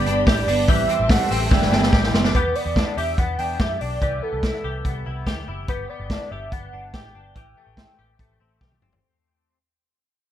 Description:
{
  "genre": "jangly indie pop",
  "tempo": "144 BPM",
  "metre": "4/4",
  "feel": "straight",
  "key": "unclear",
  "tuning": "A4 = 440 Hz",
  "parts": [
    { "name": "warm velvety synth lead", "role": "melody", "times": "0.0-8.6 s", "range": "A4 to G5", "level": "-26 LUFS", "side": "right 1 dB", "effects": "chorus" },
    { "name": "picked steel-string acoustic guitar", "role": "accompaniment", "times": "0.0-2.4 s", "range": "G2 to G4", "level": "-25 LUFS", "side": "right 6 dB", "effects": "none" },
    { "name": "warm studio string section", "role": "sustained chords", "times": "0.0-2.3 s", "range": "G4 to B5", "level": "-33 LUFS", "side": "left 2 dB", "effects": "none" },
    { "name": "direct-recorded clean electric guitar", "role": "arpeggios", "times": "0.0-9.6 s", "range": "E3 to G4", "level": "-28 LUFS", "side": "left 5 dB", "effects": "ensemble chorus" },
    { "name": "vintage muted picked electric bass", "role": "bass", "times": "0.0-9.0 s", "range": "F#1 to F#2", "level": "-28 LUFS", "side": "equal", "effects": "none" },
    { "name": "vintage drum kit", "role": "drums", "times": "0.1-9.0 s", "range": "hi-hat, kick drum, snare drum, toms", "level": "-21 LUFS", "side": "equal", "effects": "none" }
  ],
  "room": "light reverb",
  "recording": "none",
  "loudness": "-19 LUFS",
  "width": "side -11 dB against mid",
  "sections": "0.0-2.3 A section; 2.3-9.0 B section",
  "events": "drum fill 1.5-2.3, 8.6-9.0; fade-out 2.3-9.0",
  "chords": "0.0 G; 0.7 Am7; 1.5 G6; 2.3 Em7; 4.0 Cmaj7; 5.7 G; 7.4 Am7"
}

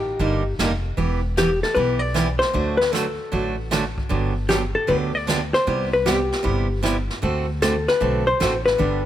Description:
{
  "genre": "country, western swing",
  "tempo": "154 BPM",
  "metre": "4/4",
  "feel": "swing 65% on 8ths",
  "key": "unclear",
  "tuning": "A4 = 440 Hz",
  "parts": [
    { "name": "hollow-body jazz guitar", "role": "melody", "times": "0.0-9.1 s", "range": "G4 to D5", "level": "-21 LUFS", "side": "left 2 dB", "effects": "none" },
    { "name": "upright bass", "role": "bass", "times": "0.0-9.1 s", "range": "E1 to D2", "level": "-26 LUFS", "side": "equal", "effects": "none" },
    { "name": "picked steel-string acoustic guitar", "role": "accompaniment", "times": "0.2-9.0 s", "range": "C3 to A4", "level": "-24 LUFS", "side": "right 3 dB", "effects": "none" },
    { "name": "jazz brush drum kit", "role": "drums", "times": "0.2-9.1 s", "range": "brushed snare drum, hi-hat, kick drum, snare drum", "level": "-30 LUFS", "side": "equal", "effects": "none" }
  ],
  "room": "light reverb",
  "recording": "none",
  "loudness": "-19 LUFS",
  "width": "side -11 dB against mid",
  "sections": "0.0-9.1 A section",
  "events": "none",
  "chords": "0.0 Ebmaj7/G; 1.0 Em; 2.5 D; 4.1 Gmaj7; 5.7 Cmaj7; 7.2 D7"
}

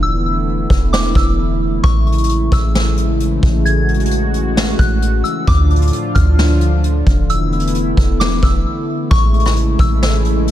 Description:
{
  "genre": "hip hop, atmospheric cloud-rap",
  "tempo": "132 BPM",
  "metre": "4/4",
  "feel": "half-time",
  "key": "A major",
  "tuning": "A4 = 440 Hz",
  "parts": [
    { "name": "soft synth bell", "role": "melody", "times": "0.0-10.0 s", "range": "C#6 to G#6", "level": "-23 LUFS", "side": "left 2 dB", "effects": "chorus, low-pass filter, ping-pong delay" },
    { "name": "warm analog pad", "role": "sustained chords", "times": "0.0-10.5 s", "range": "A2 to F#4", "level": "-19 LUFS", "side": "equal", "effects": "chorus, sidechain pumping" },
    { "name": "soft 808-style bass", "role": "bass", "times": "0.0-10.5 s", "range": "E1 to D2", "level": "-16 LUFS", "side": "equal", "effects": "none" },
    { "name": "vintage brush drum kit", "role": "drums", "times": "0.7-10.5 s", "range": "hi-hat, kick drum, rim click, snare drum", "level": "-17 LUFS", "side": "equal", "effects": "none" }
  ],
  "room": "light reverb",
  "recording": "none",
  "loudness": "-12 LUFS",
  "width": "side -12 dB against mid",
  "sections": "0.0-9.1 A section; 9.1-10.5 B section",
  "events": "break 0.0-1.8, 8.7-9.1",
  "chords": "0.0 E7sus4; 1.8 Amaj7; 5.5 Dm; 7.3 E7sus4; 9.1 Amaj7"
}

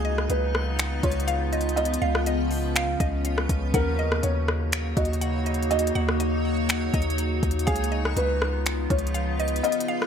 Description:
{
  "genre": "hip hop, atmospheric cloud-rap",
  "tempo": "122 BPM",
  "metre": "4/4",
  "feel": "half-time",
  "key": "unclear",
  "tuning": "A4 = 440 Hz",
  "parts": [
    { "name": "felt-muted upright piano", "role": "melody", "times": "0.0-10.1 s", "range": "Ab4 to Eb5", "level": "-30 LUFS", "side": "equal", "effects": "wide subtle chorus, ping-pong delay" },
    { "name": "warbly tape-like pad", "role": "sustained chords", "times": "0.0-10.1 s", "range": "Db3 to Gb4", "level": "-29 LUFS", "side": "equal", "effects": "chorus, built-in reverb, phaser, sidechain pumping" },
    { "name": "mallet-like synth pluck", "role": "arpeggios", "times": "0.0-10.1 s", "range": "F4 to Gb5", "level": "-33 LUFS", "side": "right 1 dB", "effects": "chorus, phaser, ping-pong delay" },
    { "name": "long sustained 808-style bass", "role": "bass", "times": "0.0-9.6 s", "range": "Db2 to Eb2", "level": "-27 LUFS", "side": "equal", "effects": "none" },
    { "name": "backwards swelling texture", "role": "texture", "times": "0.0-10.1 s", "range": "F3 to Db5", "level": "-35 LUFS", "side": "equal", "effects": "built-in reverb" },
    { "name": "smooth R&B drum kit", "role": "drums", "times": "0.2-10.1 s", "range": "finger snaps, hi-hat, kick drum, rim click", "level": "-27 LUFS", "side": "left 1 dB", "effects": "overdrive" }
  ],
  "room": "light reverb, digital ambience",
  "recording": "bright 1980s-style digital production",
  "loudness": "-22 LUFS",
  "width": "side -8 dB against mid",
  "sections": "0.0-10.1 A section",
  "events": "kick muted 9.6-10.1",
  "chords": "0.0 Db9; 3.7 Ebm7; 7.7 Db9"
}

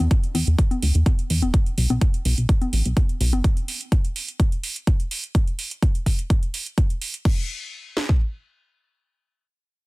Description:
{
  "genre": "progressive house",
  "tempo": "126 BPM",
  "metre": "4/4",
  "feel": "straight",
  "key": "unclear",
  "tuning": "A4 = 440 Hz",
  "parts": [
    { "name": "plucky analog bass", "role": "bass", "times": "0.0-3.4 s", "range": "E1 to E2", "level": "-19 LUFS", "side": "equal", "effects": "sidechain pumping" },
    { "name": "house drum kit", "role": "drums", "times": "0.0-7.4 s", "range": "crash cymbal, hi-hat", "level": "-30 LUFS", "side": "right 3 dB", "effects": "none" },
    { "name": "house drum kit", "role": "drums", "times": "0.1-8.2 s", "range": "kick drum, snare drum", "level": "-19 LUFS", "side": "equal", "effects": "none" },
    { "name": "congas", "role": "percussion", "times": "0.3-3.4 s", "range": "none", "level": "-29 LUFS", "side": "left 4 dB", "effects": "sidechain pumping on perc, sidechain pumping on toms" }
  ],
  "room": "digital ambience",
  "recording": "dense, heavily limited modern master",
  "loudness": "-20 LUFS",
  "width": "side -23 dB against mid",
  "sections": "0.0-7.3 A section; 7.3-9.9 B section",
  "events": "filter sweep on analog synth bass 0.0-3.4",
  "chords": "none"
}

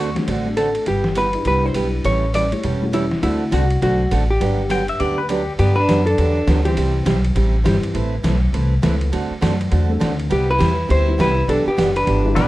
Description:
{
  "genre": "country, western swing",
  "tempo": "203 BPM",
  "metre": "4/4",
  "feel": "swing 61% on 8ths",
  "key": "G major",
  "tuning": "A4 = 440 Hz",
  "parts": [
    { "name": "pedal steel guitar", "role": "second line", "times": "0.0-0.1, 4.7-5.5, 12.4-12.5 s", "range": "F#4 to G5", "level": "-24 LUFS", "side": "left 3 dB", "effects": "none" },
    { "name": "picked steel-string acoustic guitar", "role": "accompaniment", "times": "0.0-12.5 s", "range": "B2 to B4", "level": "-23 LUFS", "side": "right 3 dB", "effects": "none" },
    { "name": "upright bass", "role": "bass", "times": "0.0-12.5 s", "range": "E1 to G2", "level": "-20 LUFS", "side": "equal", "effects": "none" },
    { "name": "dark upright piano", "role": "accompaniment", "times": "0.1-12.4 s", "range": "E3 to F#5", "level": "-27 LUFS", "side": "left 2 dB", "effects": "none" },
    { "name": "trip hop sampler-style drum kit", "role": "drums", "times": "0.2-12.4 s", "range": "hi-hat, ride cymbal, snare drum", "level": "-26 LUFS", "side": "left 1 dB", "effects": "none" },
    { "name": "hollow-body jazz guitar", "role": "melody", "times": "0.6-7.0, 10.3-12.5 s", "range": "E4 to D5", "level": "-21 LUFS", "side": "left 1 dB", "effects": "none" },
    { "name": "clear fiddle", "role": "second line", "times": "5.6-7.0, 10.3-12.5 s", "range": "B3 to E4", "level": "-26 LUFS", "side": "right 1 dB", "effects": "none" }
  ],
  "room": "moderate studio reverb, RT60 0.8 s",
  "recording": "none",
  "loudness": "-16 LUFS",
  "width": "side -17 dB against mid",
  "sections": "0.0-5.6 A section; 5.6-12.5 B section",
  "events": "none",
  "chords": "0.0 D7; 0.9 G6; 2.0 A7; 3.2 D7; 4.4 Gmaj7; 6.8 C; 8.0 Amadd9; 9.1 D7; 10.3 Cmaj7; 11.5 G6"
}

